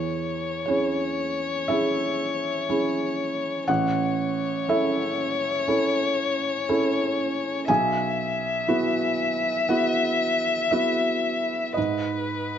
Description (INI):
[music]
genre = neoclassical piano and strings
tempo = 60 BPM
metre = 4/4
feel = rubato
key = E major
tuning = A4 = 440 Hz
[part]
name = dark violin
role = melody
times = 0.0-12.6 s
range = B4 to E5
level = -26 LUFS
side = left 4 dB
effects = none
[part]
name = felt-muted upright piano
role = accompaniment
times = 0.0-12.6 s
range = A1 to G#5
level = -25 LUFS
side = right 2 dB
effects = none
[sound]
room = moderate large studio reverb, RT60 1.3 s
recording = nothing above 7.8 kHz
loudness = -22 LUFS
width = side -9 dB against mid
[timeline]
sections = 0.0-12.6 A section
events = none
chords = 0.0 E6; 3.7 A; 7.7 Bsus4; 11.8 G#m